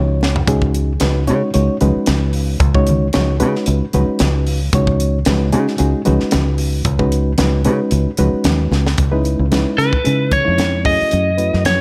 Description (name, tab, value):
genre	electric jazz fusion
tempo	113 BPM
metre	4/4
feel	swing 54% on 16ths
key	C# minor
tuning	A4 = 440 Hz
part	bright reed electric piano	accompaniment	0.0-11.8 s	G#3 to C#5	-21 LUFS	equal	overdrive
part	fingered electric bass	bass	0.0-11.8 s	C#2 to C#3	-19 LUFS	equal	none
part	crisp fusion drum kit	drums	0.2-11.8 s	hi-hat, kick drum, snare drum, toms	-22 LUFS	equal	none
part	congas	percussion	0.2-11.8 s	none	-26 LUFS	equal	none
part	lightly driven lead guitar	melody	9.8-11.8 s	B4 to D#5	-19 LUFS	equal	none
room	light reverb, studio ambience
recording	none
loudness	-16 LUFS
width	mono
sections	0.0-9.0 A section; 9.0-11.8 B section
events	drum fill 0.0-0.5, 8.7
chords	0.0 C#9sus4; 9.0 C#m9; 10.9 F#m9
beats	| 0.48 1.01 1.54 2.08 | 2.61 3.14 3.67 4.20 | 4.73 5.26 5.80 6.33 | 6.86 7.39 7.92 8.46 | 8.99 9.52 10.06 10.59 | 11.12 11.66